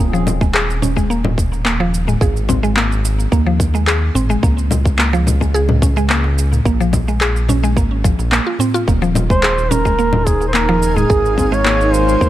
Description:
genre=organic downtempo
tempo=108 BPM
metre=4/4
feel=straight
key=unclear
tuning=A4 = 440 Hz
part: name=mallet-like synth pluck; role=arpeggios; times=0.0-12.3 s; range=F3 to Ab4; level=-20 LUFS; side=equal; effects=chorus, digital delay
part: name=round analog bass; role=bass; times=0.0-12.3 s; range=Eb1 to Eb2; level=-17 LUFS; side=equal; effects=none
part: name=electronic shaker, congas and handclaps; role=drums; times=0.0-12.3 s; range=none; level=-20 LUFS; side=left 1 dB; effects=none
part: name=darbuka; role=percussion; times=0.3-12.0 s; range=none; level=-25 LUFS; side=right 1 dB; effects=none
part: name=electronic kick drum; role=drums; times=0.4-12.3 s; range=none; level=-16 LUFS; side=equal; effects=none
part: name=granular cloud pad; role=sustained chords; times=10.2-12.3 s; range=Ab3 to Ab5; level=-22 LUFS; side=equal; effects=built-in reverb, sidechain pumping
part: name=warm duduk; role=melody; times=9.3-12.3 s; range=Ab4 to Db5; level=-16 LUFS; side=right 1 dB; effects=digital delay
room=light reverb, digital ambience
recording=none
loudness=-13 LUFS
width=side -13 dB against mid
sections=0.0-12.3 A section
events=none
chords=0.0 Ebsus4; 2.2 Ab5; 4.4 Db5; 6.7 Bb7(no3); 8.9 Ebsus4; 11.1 Ab

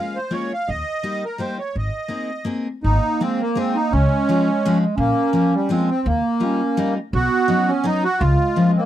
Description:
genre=musette waltz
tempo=168 BPM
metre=3/4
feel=swing 53% on 8ths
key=Ab major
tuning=A4 = 440 Hz
part: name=accordion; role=melody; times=0.0-8.8 s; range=G3 to F5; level=-22 LUFS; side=equal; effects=light tremolo tuning
part: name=picked steel-string acoustic guitar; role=accompaniment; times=0.0-8.8 s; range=F3 to Ab4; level=-22 LUFS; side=left 3 dB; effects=none
part: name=upright bass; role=bass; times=0.7-8.3 s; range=Ab1 to Eb2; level=-19 LUFS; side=equal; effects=none
part: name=dark clarinet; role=second line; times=2.9-8.9 s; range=Ab3 to Db4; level=-22 LUFS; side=right 5 dB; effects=none
room=light reverb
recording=dry, close 1970s-style studio recording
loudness=-18 LUFS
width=side -12 dB against mid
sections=0.0-2.8 A section; 2.8-8.9 A section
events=none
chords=0.0 Db6; 0.7 Eb; 1.8 Abadd9; 2.8 Ab; 3.9 Db; 5.0 Bbm; 6.1 Ebadd9; 7.1 Badd9; 8.2 Db6

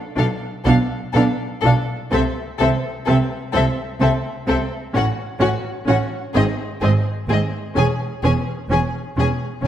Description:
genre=classical, slow romantic movement for string orchestra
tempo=42 BPM (dotted quarters)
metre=6/8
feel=rubato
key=C# minor from 5.0 s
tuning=A4 = 440 Hz
part: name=warm symphonic violin section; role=melody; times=0.2-9.7 s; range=D#5 to G#5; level=-27 LUFS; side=left 6 dB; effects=none
part: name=clear symphonic violin section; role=second line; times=0.2-9.3 s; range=F#4 to A4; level=-26 LUFS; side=left 4 dB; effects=none
part: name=rich chamber viola section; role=accompaniment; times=0.2-9.7 s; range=C4 to D4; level=-24 LUFS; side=equal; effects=none
part: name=rich symphonic cello section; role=bass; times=0.2-9.7 s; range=E2 to C3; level=-23 LUFS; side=right 2 dB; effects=none
part: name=warm symphonic double bass section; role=bass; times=0.2-9.7 s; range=E1 to C2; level=-22 LUFS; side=right 2 dB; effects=none
room=moderate scoring stage reverb, RT60 1.6 s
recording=none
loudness=-17 LUFS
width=side -11 dB against mid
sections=0.0-9.7 A section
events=none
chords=0.0 Bm; 2.1 N.C.; 5.0 F#m/A; 6.4 G#; 7.8 C#m/E

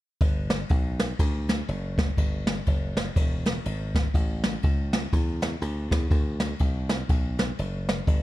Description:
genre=uptempo gospel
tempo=122 BPM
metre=4/4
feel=swing 61% on 8ths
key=G major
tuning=A4 = 440 Hz
part: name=dry thumbed slap bass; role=bass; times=0.2-8.2 s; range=E1 to E2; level=-30 LUFS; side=equal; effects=none
part: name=jazz brush drum kit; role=drums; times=0.2-8.2 s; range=kick drum, ride cymbal, snare drum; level=-24 LUFS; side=equal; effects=none
room=little or no reverb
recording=dark, warm production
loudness=-24 LUFS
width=side -16 dB against mid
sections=0.2-8.2 A section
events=none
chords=none

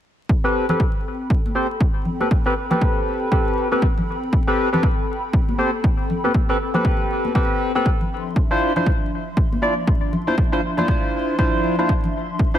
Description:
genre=deep house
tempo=119 BPM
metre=4/4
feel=swing 60% on 16ths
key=A minor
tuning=A4 = 435 Hz
part: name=hollow soft pad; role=sustained chords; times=0.3-12.6 s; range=F3 to C6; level=-29 LUFS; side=left 1 dB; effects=ensemble chorus, sidechain pumping
part: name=electronic kick drum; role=drums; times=0.3-12.5 s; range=none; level=-20 LUFS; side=equal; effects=none
part: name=percussive organ stab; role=stabs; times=0.4-12.6 s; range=C4 to D5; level=-21 LUFS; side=equal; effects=wide subtle chorus, sidechain pumping, ping-pong delay
part: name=congas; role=percussion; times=0.7-12.1 s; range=none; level=-27 LUFS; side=left 1 dB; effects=none
room=light reverb, digital ambience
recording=vinyl crackle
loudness=-18 LUFS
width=side -10 dB against mid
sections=0.3-12.6 A section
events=filter sweep on synth stab 0.3-12.6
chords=0.3 Am9; 8.1 Dm9

